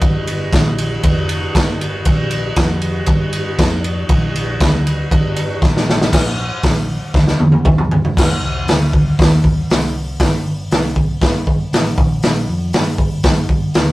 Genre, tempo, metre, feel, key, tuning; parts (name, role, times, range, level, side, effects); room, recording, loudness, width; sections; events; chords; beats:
garage rock duo or trio; 118 BPM; 4/4; straight; G minor; A4 = 440 Hz
hollow-body short-scale picked electric bass; bass; 0.0-13.9 s; F1 to G2; -21 LUFS; equal; tube saturation
raw garage drum kit; drums; 0.0-13.9 s; crash cymbal, hi-hat, kick drum, ride cymbal, snare drum, toms; -14 LUFS; equal
light reverb; rough rehearsal-room recording; -13 LUFS; side -18 dB against mid
0.0-6.1 A section; 6.1-8.2 B section; 8.2-13.9 C section
drum fill 5.6-6.1, 7.1-8.2
| 0.01 0.52 1.03 1.54 | 2.05 2.56 3.07 3.58 | 4.09 4.60 5.11 5.62 | 6.13 6.63 7.14 7.65 | 8.16 8.67 9.18 9.68 | 10.19 10.70 11.21 11.71 | 12.22 12.73 13.23 13.74